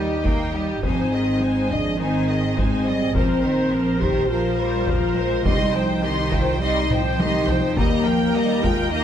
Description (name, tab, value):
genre	cinematic, epic orchestral film score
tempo	104 BPM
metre	4/4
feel	straight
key	C minor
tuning	A4 = 440 Hz
part	warm symphonic violin section	melody	0.0-9.0 s	Bb4 to C6	-31 LUFS	left 4 dB	none
part	rich symphonic violin section	second line	0.0-9.0 s	G4 to G5	-28 LUFS	right 1 dB	none
part	warm symphonic viola section	accompaniment	0.0-9.0 s	Eb4 to C5	-29 LUFS	right 3 dB	none
part	mellow French horn section	sustained chords	0.0-9.0 s	Bb3 to G4	-23 LUFS	left 3 dB	none
part	rich symphonic cello section	bass	0.0-9.0 s	Eb3 to Bb3	-27 LUFS	right 3 dB	none
part	rich symphonic double bass section	bass	0.0-9.0 s	Ab1 to Eb2	-28 LUFS	right 2 dB	none
part	impact	sound effects	0.0-0.8 s	none	barely audible	none	none
part	taiko ensemble	drums	0.3-9.0 s	none	-25 LUFS	equal	none
part	timpani	percussion	5.5-6.3 s	C3	-30 LUFS	equal	none
room	moderate scoring stage reverb, RT60 1.6 s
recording	none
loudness	-18 LUFS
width	side -9 dB against mid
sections	0.0-9.0 A section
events	impact 0.0-0.8; drum fill 6.9-7.8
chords	0.0 Eb; 0.8 Ab; 3.2 Bbsus2; 5.5 Cm; 7.8 Eb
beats	0.26 | 0.84 1.42 2.00 2.58 | 3.15 3.73 4.31 4.88 | 5.46 6.04 6.61 7.19 | 7.77 8.35 8.93